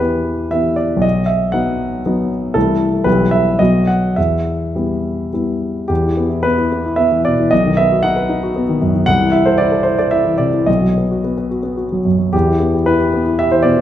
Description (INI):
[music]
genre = classical, romantic character piece for solo piano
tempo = 102-120 BPM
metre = 3/4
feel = rubato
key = E minor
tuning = A4 = 440 Hz
[part]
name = warm concert grand piano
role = solo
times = 0.0-13.8 s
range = B1 to F#5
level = -13 LUFS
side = equal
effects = none
[sound]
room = wet recital hall reverb, RT60 1.5 s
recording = minimal, uncompressed stereo recording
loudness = -13 LUFS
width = side -11 dB against mid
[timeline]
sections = 0.0-5.9 A section; 5.9-13.8 A section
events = none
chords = 0.0 Em; 1.0 B; 2.6 Am/C; 3.1 Em/B; 3.6 B; 4.2 Em; 7.5 B; 9.1 Am/C; 10.7 B; 12.3 Em